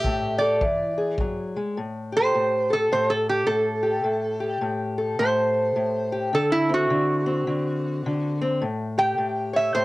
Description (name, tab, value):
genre	acoustic country blues, solo or duo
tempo	105 BPM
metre	4/4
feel	swing 62% on 8ths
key	unclear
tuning	A4 = 438 Hz
part	metal-body resonator slide guitar	melody	0.0-9.8 s	E4 to G5	-22 LUFS	right 1 dB	none
part	fingerpicked steel-string acoustic guitar	accompaniment	0.0-9.8 s	A2 to C#5	-26 LUFS	left 2 dB	cassette tape
part	kick drum	drums	0.0-1.3 s	none	-29 LUFS	equal	none
room	light reverb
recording	home recording on cassette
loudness	-21 LUFS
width	side -19 dB against mid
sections	0.0-1.8 A section; 1.8-9.8 B section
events	resonator guitar played with a steel bar solo 1.8-9.8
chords	0.0 A5; 0.6 E7; 1.8 Am7; 6.3 D7; 8.6 A7